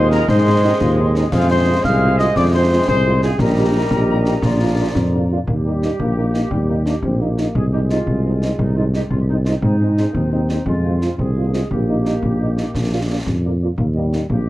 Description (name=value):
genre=military-style march for wind band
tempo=116 BPM (dotted quarters)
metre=6/8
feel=straight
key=Eb major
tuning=A4 = 439 Hz
part: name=dark cornet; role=melody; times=0.0-14.5 s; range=F4 to F5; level=-23 LUFS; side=left 2 dB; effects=tape echo
part: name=mellow hollow piccolo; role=second line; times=0.0-5.3 s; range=F5 to F6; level=-26 LUFS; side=left 2 dB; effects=none
part: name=mellow woodwind section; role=second line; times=0.0-14.5 s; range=Eb4 to Eb5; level=-28 LUFS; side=right 3 dB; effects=tape echo
part: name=warm euphonium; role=second line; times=0.0-14.4 s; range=F3 to Ab4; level=-27 LUFS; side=left 2 dB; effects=none
part: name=bright trombone section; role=sustained chords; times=0.0-5.3 s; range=C3 to Ab3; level=-25 LUFS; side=right 2 dB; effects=none
part: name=mellow tuba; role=bass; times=0.0-14.5 s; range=Bb1 to Ab2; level=-18 LUFS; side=equal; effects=none
part: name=dark French horn section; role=accompaniment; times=0.1-14.2 s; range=G3 to G4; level=-26 LUFS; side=right 2 dB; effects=none
part: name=concert snare drum, concert bass drum and clash cymbals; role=drums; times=0.1-14.4 s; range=none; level=-24 LUFS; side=equal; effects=none
room=light reverb, small room ambience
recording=none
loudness=-15 LUFS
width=side -16 dB against mid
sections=0.0-5.5 A section; 5.5-14.5 B section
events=none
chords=0.0 Ab; 1.3 Fm; 3.4 Eb/Bb; 4.4 Bb; 5.5 Eb; 7.6 Ab/C; 9.6 Ab; 10.7 Fm; 11.7 Eb/Bb; 12.7 Bb; 13.8 Eb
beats=| 0.29 0.81 | 1.33 1.85 | 2.36 2.88 | 3.40 3.92 | 4.44 4.96 | 5.48 6.00 | 6.51 7.03 | 7.55 8.07 | 8.59 9.11 | 9.63 10.15 | 10.67 11.19 | 11.71 12.23 | 12.75 13.27 | 13.79 14.30